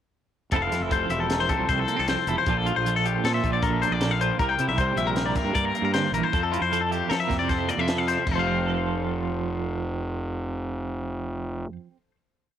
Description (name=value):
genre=math rock and midwest emo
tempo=155 BPM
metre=5/4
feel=straight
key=F major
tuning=A4 = 441 Hz
part: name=twelve-string electric guitar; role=accompaniment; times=0.5-12.2 s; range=F2 to C5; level=-29 LUFS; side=right 9 dB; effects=tremolo, cassette tape
part: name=twangy electric guitar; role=arpeggios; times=0.5-11.8 s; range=F4 to G5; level=-26 LUFS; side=left 8 dB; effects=spring reverb, cassette tape, analog delay
part: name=fuzz fingered electric bass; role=bass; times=0.5-11.6 s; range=E1 to F3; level=-28 LUFS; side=equal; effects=overdrive
part: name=compact cocktail drum kit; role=drums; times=0.5-8.4 s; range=crash cymbal, hi-hat, kick drum, snare drum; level=-30 LUFS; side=equal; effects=cassette tape
room=little or no reverb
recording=home recording on cassette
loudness=-23 LUFS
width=side -10 dB against mid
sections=0.5-8.3 A section; 8.3-12.1 final chord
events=none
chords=0.5 Fmaj7; 2.5 Bbmaj9; 4.4 C9; 6.3 Fmaj7; 8.3 F